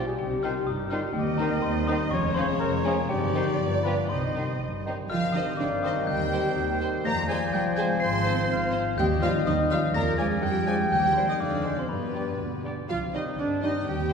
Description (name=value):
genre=cinematic, playful, whimsical film cue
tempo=123 BPM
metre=2/4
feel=straight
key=C minor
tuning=A4 = 435 Hz
part: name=glockenspiel with rubber mallets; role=melody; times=0.0-12.6 s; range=G5 to C7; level=-34 LUFS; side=left 4 dB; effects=none
part: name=rich studio violin section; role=melody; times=0.0-14.1 s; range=Db4 to Eb5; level=-40 LUFS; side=left 2 dB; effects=none
part: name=mellow clarinet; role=second line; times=0.0-14.1 s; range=Eb4 to G5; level=-32 LUFS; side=left 1 dB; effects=none
part: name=warm oboe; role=second line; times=0.0-14.1 s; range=D4 to G5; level=-38 LUFS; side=right 2 dB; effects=none
part: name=warm studio violin section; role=second line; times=0.0-14.1 s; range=G3 to C6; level=-36 LUFS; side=left 1 dB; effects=none
part: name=mellow bassoon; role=accompaniment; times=0.0-13.7 s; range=Eb3 to Ab3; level=-36 LUFS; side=right 1 dB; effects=none
part: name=warm studio viola section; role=accompaniment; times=0.0-14.1 s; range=B3 to Eb5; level=-32 LUFS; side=right 1 dB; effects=none
part: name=dark French horn section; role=sustained chords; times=0.0-14.1 s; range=Eb3 to F4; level=-34 LUFS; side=left 4 dB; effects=none
part: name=concert harp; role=arpeggios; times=0.0-14.1 s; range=F2 to C6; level=-33 LUFS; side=left 5 dB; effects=none
part: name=dark studio cello section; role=bass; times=0.0-14.1 s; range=Eb2 to C4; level=-33 LUFS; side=right 3 dB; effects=none
part: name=warm studio double bass section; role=bass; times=0.0-14.1 s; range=F1 to G2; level=-33 LUFS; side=right 3 dB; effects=none
part: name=mellow hollow silver concert flute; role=second line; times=0.4-14.1 s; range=B4 to C6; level=-35 LUFS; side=equal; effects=none
room=wet scoring stage reverb, RT60 1.5 s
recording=heard from further back in the room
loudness=-24 LUFS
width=side -6 dB against mid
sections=0.0-5.1 A section; 5.1-12.9 B section; 12.9-14.1 B section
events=none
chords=0.2 Cm; 1.2 Cm/Eb; 2.1 Db/F; 3.1 Cm/G; 3.6 G7; 4.1 Cm; 6.1 Cm/Eb; 7.0 Fm; 8.0 Fm/Ab; 9.0 Cm/Eb; 9.9 Ddim/F; 10.9 Cm/Eb; 11.4 Dm7b5/F; 11.9 G; 12.9 Cm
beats=| 0.19 0.67 | 1.16 1.64 | 2.13 2.62 | 3.11 3.60 | 4.10 4.60 | 5.10 5.59 | 6.08 6.56 | 7.05 7.53 | 8.02 8.50 | 8.98 9.47 | 9.95 10.43 | 10.91 11.40 | 11.90 12.40 | 12.90 13.39 | 13.87